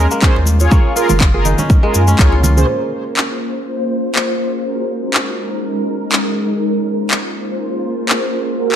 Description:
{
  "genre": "afro house",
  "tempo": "122 BPM",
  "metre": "4/4",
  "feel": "swing 55% on 16ths",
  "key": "Bb minor",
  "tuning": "A4 = 440 Hz",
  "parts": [
    { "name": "kora", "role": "arpeggios", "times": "0.0-4.1 s", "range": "Ab3 to Ab4", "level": "-22 LUFS", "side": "left 1 dB", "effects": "sidechain pumping, digital delay" },
    { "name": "mellow synth brass", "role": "stabs", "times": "0.0-8.8 s", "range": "Db4 to Db5", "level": "-21 LUFS", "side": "right 3 dB", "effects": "chorus, phaser, sidechain pumping, digital delay" },
    { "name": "warm sub bass", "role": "bass", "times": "0.0-2.6 s", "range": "Gb1 to Gb2", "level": "-13 LUFS", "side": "equal", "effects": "sidechain pumping" },
    { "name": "cabasa", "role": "percussion", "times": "0.1-2.7 s", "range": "none", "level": "-24 LUFS", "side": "left 5 dB", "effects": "none" },
    { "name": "electronic kick drum", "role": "drums", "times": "0.2-2.3 s", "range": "none", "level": "-11 LUFS", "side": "equal", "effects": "overdrive, small room ambience" },
    { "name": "house drum kit", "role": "drums", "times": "0.2-8.8 s", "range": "handclaps, toms", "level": "-18 LUFS", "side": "left 1 dB", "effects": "overdrive, small room ambience" },
    { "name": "congas", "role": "percussion", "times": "0.4-2.5 s", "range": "none", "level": "-22 LUFS", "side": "right 2 dB", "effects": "none" },
    { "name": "ethereal airy pad", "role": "sustained chords", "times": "3.3-8.8 s", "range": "Gb3 to C5", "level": "-19 LUFS", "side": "left 1 dB", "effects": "ensemble chorus, built-in reverb, sidechain pumping" }
  ],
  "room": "moderate recital hall reverb, RT60 1.6 s",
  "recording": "none",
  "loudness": "-13 LUFS",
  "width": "side -9 dB against mid",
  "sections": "0.0-2.7 A section; 2.7-8.8 B section",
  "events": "drum fill 2.3-2.7; filter sweep on analog polysynth 2.7-8.8; filter sweep on ambient pad 2.7-8.8",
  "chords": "0.0 Bbm7; 0.7 Gbmaj9; 2.7 Bbm7; 4.6 Ab9sus4; 6.6 Bbm7"
}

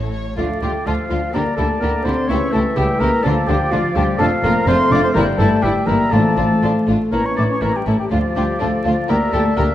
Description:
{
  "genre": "quick classical-period movement for symphony orchestra",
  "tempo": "124 BPM",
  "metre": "4/4",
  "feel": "rubato",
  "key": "D minor",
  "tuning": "A4 = 438 Hz",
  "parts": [
    { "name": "warm studio violin section", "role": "melody", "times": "0.0-9.7 s", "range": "E4 to C#5", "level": "-28 LUFS", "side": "left 5 dB", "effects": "none" },
    { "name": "rich studio violin section", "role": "second line", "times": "0.0-9.6 s", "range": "C#4 to F4", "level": "-30 LUFS", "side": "left 2 dB", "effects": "none" },
    { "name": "dark studio viola section", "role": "accompaniment", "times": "0.0-9.7 s", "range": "E3 to Bb3", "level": "-26 LUFS", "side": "equal", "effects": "none" },
    { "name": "rich studio cello section", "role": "bass", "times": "0.0-9.7 s", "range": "D2 to D3", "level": "-25 LUFS", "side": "right 1 dB", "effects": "none" },
    { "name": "rich studio double bass section", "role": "bass", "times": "0.0-9.7 s", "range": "F1 to D2", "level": "-23 LUFS", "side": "right 1 dB", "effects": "none" },
    { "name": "clear clarinet", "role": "second line", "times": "0.4-9.7 s", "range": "F4 to D5", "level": "-26 LUFS", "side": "equal", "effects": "none" },
    { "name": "clear oboe", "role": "second line", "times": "0.4-9.7 s", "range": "C#5 to G5", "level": "-28 LUFS", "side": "right 2 dB", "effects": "none" },
    { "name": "concert flute", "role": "second line", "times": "0.4-9.6 s", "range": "F5 to D6", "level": "-23 LUFS", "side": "left 1 dB", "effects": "none" },
    { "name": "mellow bassoon", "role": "accompaniment", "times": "0.4-9.7 s", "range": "D3 to A3", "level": "-24 LUFS", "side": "equal", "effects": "none" },
    { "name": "dark French horn section", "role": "sustained chords", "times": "0.4-9.7 s", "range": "F3 to D4", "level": "-22 LUFS", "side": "left 2 dB", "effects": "none" },
    { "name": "timpani", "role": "percussion", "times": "6.1-6.8 s", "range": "A2", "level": "-24 LUFS", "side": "equal", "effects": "none" }
  ],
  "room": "wet scoring stage reverb, RT60 1.6 s",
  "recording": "vinyl crackle",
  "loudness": "-15 LUFS",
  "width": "side -12 dB against mid",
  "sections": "0.4-9.7 A section",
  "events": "none",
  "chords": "0.4 Dm; 1.3 Em7b5/D; 2.3 A7/C#; 3.2 Dm; 4.2 Dm/F; 5.2 Gm69; 6.1 Dm/A; 7.1 A; 8.1 Dm; 9.1 Em7b5/D"
}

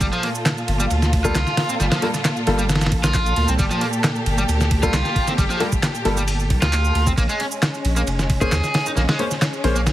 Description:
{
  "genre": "breakbeat, breaks",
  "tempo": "134 BPM",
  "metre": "4/4",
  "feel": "straight",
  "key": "unclear",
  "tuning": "A4 = 443 Hz",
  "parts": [
    { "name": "rich studio string section", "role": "sustained chords", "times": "0.0-9.9 s", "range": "Bb2 to A4", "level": "-26 LUFS", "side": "equal", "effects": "sidechain pumping" },
    { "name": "crunchy overdriven guitar", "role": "riff", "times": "0.0-9.8 s", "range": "F3 to Ab4", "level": "-25 LUFS", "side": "equal", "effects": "dub echo" },
    { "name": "saturated sub bass", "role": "bass", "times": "0.0-9.9 s", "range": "F1 to Eb2", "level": "-21 LUFS", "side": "equal", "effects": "tube saturation" },
    { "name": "dusty soul sampler-style drum kit", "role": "drums", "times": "0.0-9.9 s", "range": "hi-hat, kick drum, ride cymbal, snare drum", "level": "-22 LUFS", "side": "equal", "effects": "none" },
    { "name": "punchy analog drum machine", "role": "drums", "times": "0.0-9.9 s", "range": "handclaps, ride cymbal, shaker", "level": "-30 LUFS", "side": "right 2 dB", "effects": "overdrive" },
    { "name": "warm baby grand piano", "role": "stabs", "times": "1.2-9.7 s", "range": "G3 to C5", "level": "-25 LUFS", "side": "left 2 dB", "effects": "vintage 12-bit sampler grit, dub echo" }
  ],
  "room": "light reverb",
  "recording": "heavily compressed radio sound, multiband compression",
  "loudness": "-17 LUFS",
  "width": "side -14 dB against mid",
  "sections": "0.0-9.9 A section",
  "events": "none",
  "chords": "0.0 Gm9; 7.2 Bbm7"
}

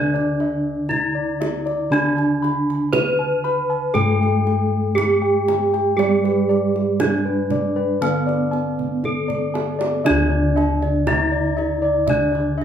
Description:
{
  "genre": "Javanese gamelan",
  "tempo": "59 BPM",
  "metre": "4/4",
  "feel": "straight",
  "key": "D pelog barang",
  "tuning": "A4 = 440 Hz",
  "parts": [
    { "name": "gamelan-type bronze metallophone", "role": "melody", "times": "0.0-12.6 s", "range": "B3+20c to B4+20c", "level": "-21 LUFS", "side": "right 1 dB", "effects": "none" },
    { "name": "gamelan-type bronze metallophone", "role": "accompaniment", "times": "0.0-12.6 s", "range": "D3 to B3+20c", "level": "-26 LUFS", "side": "right 3 dB", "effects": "none" },
    { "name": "gamelan-type bossed gongs", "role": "arpeggios", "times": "0.0-12.6 s", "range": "B4+20c to B5+20c", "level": "-25 LUFS", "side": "left 3 dB", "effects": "none" },
    { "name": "gamelan-type bossed gongs", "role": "bass", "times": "0.0-12.6 s", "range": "D2 to G4+30c", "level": "-26 LUFS", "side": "left 1 dB", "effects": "none" },
    { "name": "kendang", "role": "percussion", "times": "0.2-12.6 s", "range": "none", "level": "-28 LUFS", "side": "right 4 dB", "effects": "none" },
    { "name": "gamelan-type bronze metallophone", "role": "arpeggios", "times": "10.1-12.6 s", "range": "D5 to A5-40c", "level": "-25 LUFS", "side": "right 1 dB", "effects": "none" }
  ],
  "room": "moderate large studio reverb, RT60 0.8 s",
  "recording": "band playing live in one room",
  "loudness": "-17 LUFS",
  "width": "side -9 dB against mid",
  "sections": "0.0-10.0 A section; 10.0-12.6 A section",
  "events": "drum fill 8.8-10.0",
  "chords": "none"
}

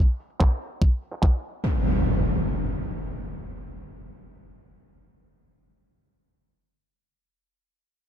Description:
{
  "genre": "psychedelic trance",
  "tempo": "146 BPM",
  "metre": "4/4",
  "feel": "straight",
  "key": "none",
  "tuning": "none",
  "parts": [
    { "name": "garage drum kit", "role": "drums", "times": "0.2-1.6 s", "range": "handclaps, hi-hat", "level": "-32 LUFS", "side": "right 2 dB", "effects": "low-pass filter on hats, low-pass filter on snare" },
    { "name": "electronic kick drum", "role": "drums", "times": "0.4-1.3 s", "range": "none", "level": "-18 LUFS", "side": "equal", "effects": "none" },
    { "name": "impact", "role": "sound effects", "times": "1.6-6.4 s", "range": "none", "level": "-25 LUFS", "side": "equal", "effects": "none" }
  ],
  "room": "light reverb, digital ambience",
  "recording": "none",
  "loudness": "-22 LUFS",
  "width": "side -10 dB against mid",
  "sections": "0.0-1.6 A section; 1.6-4.9 B section",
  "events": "filter sweep on drum 0.0-1.6",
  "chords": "none"
}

